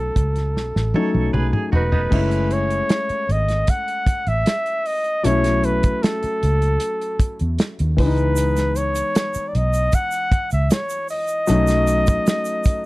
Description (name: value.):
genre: lush 1970s-style soul.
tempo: 77 BPM.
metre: 4/4.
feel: straight.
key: unclear.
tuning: A4 = 440 Hz.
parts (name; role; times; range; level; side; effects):
warm flugelhorn; melody; 0.0-12.9 s; A4 to F#5; -22 LUFS; equal; none.
warm grand piano; accompaniment; 0.0-12.9 s; E3 to E4; -25 LUFS; left 3 dB; none.
vintage muted fingered electric bass; bass; 0.0-12.2 s; E1 to E2; -20 LUFS; equal; none.
warm soul drum kit; drums; 0.2-12.8 s; crash cymbal, hi-hat, kick drum, snare drum, toms; -20 LUFS; equal; none.
direct-recorded clean electric guitar; riff; 1.0-2.3 s; B3 to C#5; -27 LUFS; right 4 dB; tremolo.
egg shaker; percussion; 8.4-12.8 s; none; -36 LUFS; right 8 dB; none.
room: little or no reverb.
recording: dry, close 1970s-style studio recording.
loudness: -17 LUFS.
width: side -20 dB against mid.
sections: 0.0-2.1 A section; 2.1-12.9 B section.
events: drum fill 0.6-2.1.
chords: 0.0 B7; 2.1 F#m9; 5.2 B9sus4; 8.0 C#m7; 11.5 B9.